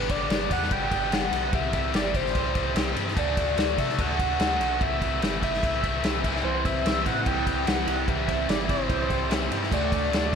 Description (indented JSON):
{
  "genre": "indie rock",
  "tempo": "147 BPM",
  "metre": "4/4",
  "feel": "straight",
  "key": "unclear",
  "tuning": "A4 = 440 Hz",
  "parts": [
    { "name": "overdriven synth lead", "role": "melody", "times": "0.0-10.4 s", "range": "B4 to G5", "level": "-28 LUFS", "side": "right 1 dB", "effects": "distortion, chorus, phaser, tape echo" },
    { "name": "distorted electric guitar", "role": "riff", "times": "0.0-10.4 s", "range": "G2 to G4", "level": "-29 LUFS", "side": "left 10 dB", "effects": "overdrive, slapback echo" },
    { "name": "electric guitar at the edge of break-up", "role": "riff", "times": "0.0-0.2, 6.4-10.4 s", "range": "E3 to G4", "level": "-33 LUFS", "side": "right 9 dB", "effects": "wide subtle chorus" },
    { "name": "pure sine sub bass", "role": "bass", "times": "0.0-10.4 s", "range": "G1 to C3", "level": "-32 LUFS", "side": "equal", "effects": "none" },
    { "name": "vintage drum kit", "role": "drums", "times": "0.1-10.4 s", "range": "crash cymbal, kick drum, ride cymbal, snare drum", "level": "-27 LUFS", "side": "right 1 dB", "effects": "none" }
  ],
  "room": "moderate concert hall reverb, RT60 2.3 s",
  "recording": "big arena sound",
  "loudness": "-23 LUFS",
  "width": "side -7 dB against mid",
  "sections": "0.0-10.4 A section",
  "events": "none",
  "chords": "0.0 G; 1.5 C; 3.2 D; 4.8 Am; 9.7 D",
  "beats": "0.31 0.72 1.13 | 1.54 1.95 2.35 2.76 | 3.17 3.58 3.99 4.40 | 4.81 5.22 5.63 6.04 | 6.45 6.86 7.26 7.67 | 8.08 8.49 8.90 9.31 | 9.72 10.13"
}